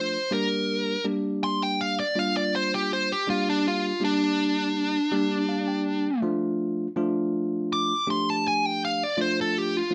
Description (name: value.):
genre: blues.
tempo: 81 BPM.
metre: 4/4.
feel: straight.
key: unclear.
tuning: A4 = 441 Hz.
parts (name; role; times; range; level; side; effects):
dark smooth lead guitar; melody; 0.0-9.9 s; D4 to D6; -27 LUFS; equal; overdrive.
bell-like tine electric piano; accompaniment; 0.0-9.9 s; F3 to G5; -30 LUFS; equal; none.
room: moderate studio reverb, RT60 0.7 s.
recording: band playing live in one room.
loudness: -26 LUFS.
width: mono.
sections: 0.0-9.9 A section.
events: lead electric guitar solo 0.0-9.9; tine electric piano fill 5.1-6.2.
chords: 0.3 Gm; 6.2 Dm.